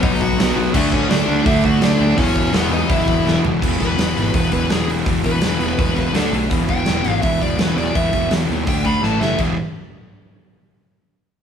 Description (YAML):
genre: punk rock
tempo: 166 BPM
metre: 4/4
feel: straight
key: unclear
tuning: A4 = 440 Hz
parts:
  - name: dark smooth lead guitar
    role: melody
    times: 0.0-9.4 s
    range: A3 to B5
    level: -22 LUFS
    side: left 2 dB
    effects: overdrive
  - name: crunchy overdriven guitar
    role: riff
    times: 0.0-3.6 s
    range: E2 to D4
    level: -25 LUFS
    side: equal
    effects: none
  - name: overdriven semi-hollow guitar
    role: riff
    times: 0.0-9.5 s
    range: E2 to D4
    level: -22 LUFS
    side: left 6 dB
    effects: none
  - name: sludgy distorted guitar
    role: riff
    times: 0.0-9.5 s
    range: E2 to D4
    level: -22 LUFS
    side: right 6 dB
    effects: overdrive
  - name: fuzz picked electric bass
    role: bass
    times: 0.0-9.6 s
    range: E1 to D#2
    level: -23 LUFS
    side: equal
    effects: overdrive
  - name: big rock drum kit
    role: drums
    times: 0.0-9.5 s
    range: crash cymbal, hi-hat, kick drum, snare drum, toms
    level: -21 LUFS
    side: right 1 dB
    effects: none
room: light reverb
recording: band playing live in one room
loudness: -15 LUFS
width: side -8 dB against mid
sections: 0.0-3.6 A section; 3.6-9.4 B section; 9.4-10.8 C section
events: drum fill 3.3-3.6, 9.0-9.4; lead electric guitar solo 3.6-9.4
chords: 0.0 B; 0.7 D; 2.2 E5; 6.1 D5; 6.5 E5; 8.7 D5; 9.0 A5; 9.4 E5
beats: 0.02 0.38 | 0.74 1.10 1.46 1.82 | 2.18 2.54 2.90 3.26 | 3.62 3.98 4.34 4.70 | 5.06 5.42 5.78 6.14 | 6.50 6.87 7.23 7.59 | 7.95 8.31 8.67 9.03 | 9.39